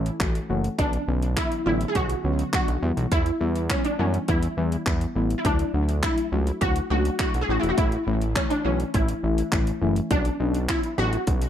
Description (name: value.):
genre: dance-pop.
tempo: 103 BPM.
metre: 4/4.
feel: straight.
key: A major.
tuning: A4 = 440 Hz.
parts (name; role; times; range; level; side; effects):
wide unison pluck; melody; 0.0-11.5 s; C#4 to G#4; -27 LUFS; equal; ensemble chorus, tape echo.
deep mellow chord stab; accompaniment; 0.0-11.4 s; D3 to F#4; -28 LUFS; left 2 dB; chorus, sidechain pumping.
fat analog bass; bass; 0.0-11.5 s; E1 to F#2; -26 LUFS; equal; sidechain pumping.
downlifter; sound effects; 0.0-0.8 s; none; barely audible; none; none.
pop drum kit; drums; 0.1-11.5 s; handclaps, hi-hat, kick drum; -25 LUFS; equal; none.
room: light reverb.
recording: none.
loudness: -22 LUFS.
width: side -10 dB against mid.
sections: 0.0-11.5 A section.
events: none.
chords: 0.0 A; 0.8 Bmadd9; 2.8 Em; 5.4 Dadd9; 7.5 A; 10.1 Bmadd9.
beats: 0.20 | 0.79 1.37 1.95 2.54 | 3.12 3.70 4.28 4.87 | 5.45 6.03 6.61 7.20 | 7.78 8.36 8.94 9.53 | 10.11 10.69 11.27.